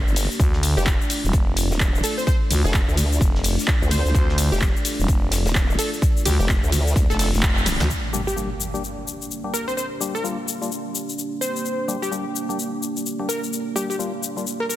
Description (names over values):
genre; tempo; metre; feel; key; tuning
bass house; 128 BPM; 4/4; swing 60% on 16ths; G minor; A4 = 436 Hz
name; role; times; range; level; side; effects
dark analog pad; sustained chords; 0.0-14.8 s; A3 to D5; -30 LUFS; equal; chorus, sidechain pumping
formant-sweep wobble bass; bass; 0.0-7.1 s; Eb1 to D2; -22 LUFS; equal; chorus, sidechain pumping
house drum kit; drums; 0.1-14.8 s; handclaps, hi-hat, ride cymbal, shaker, snare drum; -26 LUFS; left 2 dB; none
warm soul drum kit; drums; 0.2-7.8 s; hi-hat, snare drum; -36 LUFS; left 2 dB; none
growling FM bass; bass; 0.4-7.9 s; Eb1 to D2; -21 LUFS; equal; overdrive, sidechain pumping
electronic kick drum; drums; 0.4-7.5 s; none; -20 LUFS; equal; none
plucky unison lead; melody; 0.8-14.8 s; G4 to C5; -29 LUFS; equal; digital delay
impact; sound effects; 7.9-9.8 s; none; -31 LUFS; equal; none
percussive organ stab; stabs; 8.1-14.5 s; G3 to G4; -30 LUFS; left 4 dB; chorus, sidechain pumping, digital delay
room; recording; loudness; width
light reverb, digital ambience; dense, heavily limited modern master; -19 LUFS; side -14 dB against mid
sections
0.0-7.9 A section; 7.9-14.8 B section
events
drop 0.0-7.9; band accent 7.4; drum fill 7.7; impact 7.9-9.8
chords
0.4 Dm; 7.9 Gm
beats
| 0.40 0.86 1.33 1.80 | 2.27 2.74 3.21 3.68 | 4.15 4.62 5.08 5.55 | 6.02 6.49 6.96 7.43 | 7.90 8.37 8.83 9.30 | 9.77 10.24 10.71 11.18 | 11.65 12.12 12.58 13.05 | 13.52 13.99 14.46